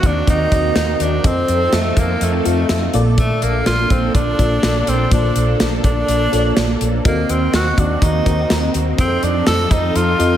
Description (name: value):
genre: 1980s-style pop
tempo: 124 BPM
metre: 4/4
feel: straight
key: Bb major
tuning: A4 = 440 Hz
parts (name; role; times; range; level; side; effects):
- breathy tenor saxophone; melody; 0.0-10.4 s; A3 to A4; -19 LUFS; equal; tape echo
- FM electric piano with soft pad layer; accompaniment; 0.0-10.4 s; Bb2 to F5; -22 LUFS; left 1 dB; chorus, phaser
- string machine, violas; sustained chords; 0.0-10.4 s; Eb3 to A4; -23 LUFS; right 1 dB; ensemble chorus
- woody fretless electric bass; bass; 0.0-10.4 s; Bb1 to F2; -20 LUFS; equal; ensemble chorus
- modern studio drum kit; drums; 0.0-10.3 s; hi-hat, kick drum, snare drum; -19 LUFS; equal; none
room: wet lush hall reverb, RT60 1.8 s, small room ambience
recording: dreamy mix soaked in reverb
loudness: -14 LUFS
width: side -11 dB against mid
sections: 0.0-10.4 A section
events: none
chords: 0.0 Ebm6; 1.2 F7; 2.9 Bbmaj7; 7.1 Ebm6; 9.0 F7